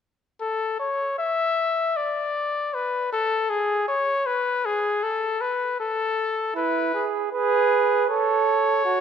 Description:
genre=classical, imitative canzona for brass ensemble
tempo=78 BPM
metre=4/4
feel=straight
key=unclear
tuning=A4 = 440 Hz
part: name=clear trumpet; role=melody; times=0.4-9.0 s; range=G#4 to E5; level=-23 LUFS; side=left 3 dB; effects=none
part: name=warm flugelhorn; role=second line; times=6.6-9.0 s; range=E4 to B4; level=-21 LUFS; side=right 9 dB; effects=none
room=moderate concert hall reverb, RT60 1.7 s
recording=none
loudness=-21 LUFS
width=side -8 dB against mid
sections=0.4-9.0 A section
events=none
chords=0.4 N.C.; 6.6 E; 8.1 F#m/A (rootless)

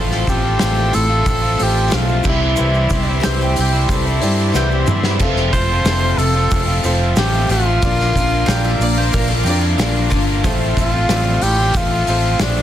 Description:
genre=folk rock and heartland rock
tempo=92 BPM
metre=4/4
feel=straight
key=unclear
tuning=A4 = 439 Hz
part: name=bowl-back mandolin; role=second line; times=0.0-10.6 s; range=D4 to G5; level=-26 LUFS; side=right 1 dB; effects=none
part: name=bright baby grand piano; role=accompaniment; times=0.0-12.6 s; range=E4 to D5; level=-29 LUFS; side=right 4 dB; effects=none
part: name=picked steel-string acoustic guitar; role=accompaniment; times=0.0-12.6 s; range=A2 to C5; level=-25 LUFS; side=left 6 dB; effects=none
part: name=accordion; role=sustained chords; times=0.0-12.6 s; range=G4 to D6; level=-29 LUFS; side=right 2 dB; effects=none
part: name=biting overdriven guitar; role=riff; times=0.0-12.6 s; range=F2 to F4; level=-22 LUFS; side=equal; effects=none
part: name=fingered electric bass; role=bass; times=0.0-12.6 s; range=F1 to G2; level=-18 LUFS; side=equal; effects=none
part: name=loose indie drum kit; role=drums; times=0.1-12.6 s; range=crash cymbal, hi-hat, kick drum, snare drum, toms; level=-21 LUFS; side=equal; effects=none
part: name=tube shaker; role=percussion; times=0.1-12.6 s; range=none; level=-35 LUFS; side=right 7 dB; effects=none
part: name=breathy tenor saxophone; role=melody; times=0.3-12.6 s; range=D4 to C5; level=-20 LUFS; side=equal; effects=none
room=light reverb, small room ambience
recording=dense, heavily limited modern master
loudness=-14 LUFS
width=side -11 dB against mid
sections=0.0-12.6 A section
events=drum fill 4.5-5.2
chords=0.0 F/A; 2.2 C; 5.2 F; 7.8 Bb; 10.4 F/A

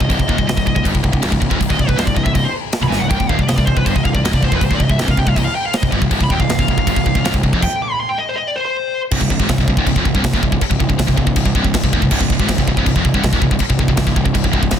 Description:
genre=heavy metal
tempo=160 BPM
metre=4/4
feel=straight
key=C harmonic minor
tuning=A4 = 440 Hz
part: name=high-gain lead guitar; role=melody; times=0.0-9.0 s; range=B4 to D6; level=-21 LUFS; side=equal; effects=distortion, ping-pong delay
part: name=scooped high-gain guitar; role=riff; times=0.0-14.8 s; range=C2 to Ab2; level=-17 LUFS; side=equal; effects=distortion
part: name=fuzz picked electric bass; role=bass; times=0.0-14.8 s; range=C1 to Ab1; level=-22 LUFS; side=equal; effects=overdrive
part: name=tight metal drum kit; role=drums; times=0.0-14.8 s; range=china cymbal, crash cymbal, kick drum, snare drum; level=-18 LUFS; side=equal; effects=none
room=small room ambience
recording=dense, heavily limited modern master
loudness=-14 LUFS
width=side -9 dB against mid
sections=0.0-9.1 A section; 9.1-14.8 B section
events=lead electric guitar solo 0.0-9.1; drum fill 2.9; stop 7.6-9.1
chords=0.0 Cm; 9.1 N.C.

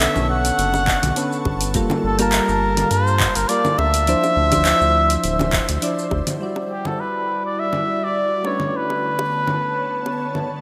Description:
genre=sunset chillout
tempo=103 BPM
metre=4/4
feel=swing 54% on 16ths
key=E minor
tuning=A4 = 440 Hz
part: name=trumpet with cup mute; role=melody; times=0.0-10.5 s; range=G4 to F#5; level=-23 LUFS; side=equal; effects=delay
part: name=soft electric-piano-like synth keys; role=accompaniment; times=0.0-10.6 s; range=D3 to A5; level=-27 LUFS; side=equal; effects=chorus
part: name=ethereal airy pad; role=sustained chords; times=0.2-10.6 s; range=D3 to E6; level=-32 LUFS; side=equal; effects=ensemble chorus, built-in reverb
part: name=round analog bass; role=bass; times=0.0-6.2 s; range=D1 to G2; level=-25 LUFS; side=equal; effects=none
part: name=smooth R&B drum kit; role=drums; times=0.0-10.5 s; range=congas, handclaps, hi-hat, shaker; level=-26 LUFS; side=equal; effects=none
part: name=bongos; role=percussion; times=0.7-10.2 s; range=none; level=-34 LUFS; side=equal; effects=none
part: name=electronic kick drum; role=drums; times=0.9-6.2 s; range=none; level=-28 LUFS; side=equal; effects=none
room=wet lush hall reverb, RT60 2.5 s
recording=bright 1980s-style digital production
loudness=-20 LUFS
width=mono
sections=0.0-6.4 A section; 6.4-10.6 B section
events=none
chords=0.0 Bm9; 1.8 Gm9; 4.1 Dm9; 6.4 Em9; 8.4 Bm9

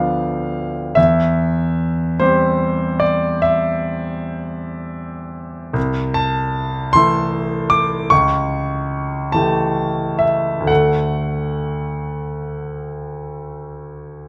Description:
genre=classical, romantic nocturne for solo piano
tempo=41-52 BPM (dotted quarters)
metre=12/8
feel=rubato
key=C major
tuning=A4 = 442 Hz
part: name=clear concert grand piano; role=solo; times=0.0-14.3 s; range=C2 to D6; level=-19 LUFS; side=equal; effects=none
room=light reverb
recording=none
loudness=-19 LUFS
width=mono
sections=0.0-14.3 A section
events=none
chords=0.0 Bdim/D; 1.0 C/E; 5.8 Am/C; 8.1 A7/C#; 10.7 D

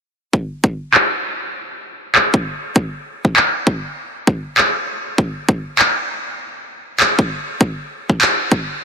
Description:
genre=glitch hop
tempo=99 BPM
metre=4/4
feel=swing 61% on 16ths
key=none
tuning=none
part: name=electronic kick drum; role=drums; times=0.3-8.7 s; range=none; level=-16 LUFS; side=equal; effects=high-pass filter on kick
part: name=electronic handclaps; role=drums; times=0.9-8.4 s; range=none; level=-16 LUFS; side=equal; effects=low-pass filter on snare, low-pass filter on room
room=moderate plate reverb, RT60 3.5 s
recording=dense, heavily limited modern master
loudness=-15 LUFS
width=side -6 dB against mid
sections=0.3-8.8 A section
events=none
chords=none

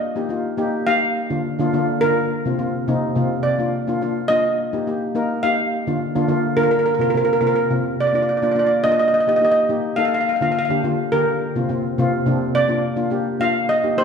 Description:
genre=calypso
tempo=105 BPM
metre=4/4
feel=straight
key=Bb major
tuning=A4 = 440 Hz
part: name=steel pan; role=melody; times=0.0-14.0 s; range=Bb4 to F5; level=-19 LUFS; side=right 1 dB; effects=none
part: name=steel pan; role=accompaniment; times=0.2-14.0 s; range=C3 to Bb4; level=-20 LUFS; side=left 1 dB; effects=none
room=wet recital hall reverb, RT60 1.6 s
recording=heard from further back in the room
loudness=-17 LUFS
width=side -6 dB against mid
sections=0.0-14.0 A section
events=none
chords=0.0 Eb; 1.2 Bb/D; 2.3 F7sus4/C; 3.4 Bb; 4.6 Eb; 5.7 Bb/D; 6.9 Fsus4/C; 8.0 Bb; 9.1 Eb; 10.3 Bb/D; 11.4 Fsus4/C; 12.5 Bb

